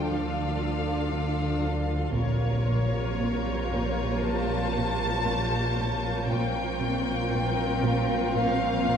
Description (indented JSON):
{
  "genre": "cinematic, suspense film score",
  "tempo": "58 BPM",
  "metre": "4/4",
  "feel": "straight",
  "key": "unclear",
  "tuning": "A4 = 445 Hz",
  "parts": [
    { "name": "warm symphonic violin section", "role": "melody", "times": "0.0-9.0 s", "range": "Db5 to A5", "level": "-32 LUFS", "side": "left 2 dB", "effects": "none" },
    { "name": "warm symphonic violin section", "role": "second line", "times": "0.0-9.0 s", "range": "F4 to Bb4", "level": "-34 LUFS", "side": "left 2 dB", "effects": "none" },
    { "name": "warm chamber viola section", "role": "accompaniment", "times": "0.0-9.0 s", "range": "C3 to D4", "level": "-33 LUFS", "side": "right 2 dB", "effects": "none" },
    { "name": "glass harmonica", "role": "sustained chords", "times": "0.0-9.0 s", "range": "C4 to F5", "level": "-36 LUFS", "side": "left 1 dB", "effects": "none" },
    { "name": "rich symphonic cello section", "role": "bass", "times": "0.0-9.0 s", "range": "Bb2 to D3", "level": "-33 LUFS", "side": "right 1 dB", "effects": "none" },
    { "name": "rich symphonic double bass section", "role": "bass", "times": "0.0-9.0 s", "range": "Bb1 to D2", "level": "-32 LUFS", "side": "right 1 dB", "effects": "none" },
    { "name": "analog drone", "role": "drone", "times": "0.0-9.0 s", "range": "Bb1 to D2", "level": "-35 LUFS", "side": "left 1 dB", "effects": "chorus" },
    { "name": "dark symphonic violin section", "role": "texture", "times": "0.0-9.0 s", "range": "Db6 to G6", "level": "-42 LUFS", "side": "left 2 dB", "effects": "none" },
    { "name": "vibraphone with medium mallets", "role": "texture", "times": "0.0-9.0 s", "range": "A4 to A5", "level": "-38 LUFS", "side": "right 2 dB", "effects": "none" },
    { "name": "rich symphonic cello section", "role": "riff", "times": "0.1-9.0 s", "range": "Bb2 to D3", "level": "-34 LUFS", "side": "right 1 dB", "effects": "none" }
  ],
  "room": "wet scoring stage reverb, RT60 2.0 s",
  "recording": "heard from further back in the room",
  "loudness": "-24 LUFS",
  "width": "side -7 dB against mid",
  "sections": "0.0-9.0 A section",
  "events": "none",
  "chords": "0.0 Dm; 2.2 Bbmadd9"
}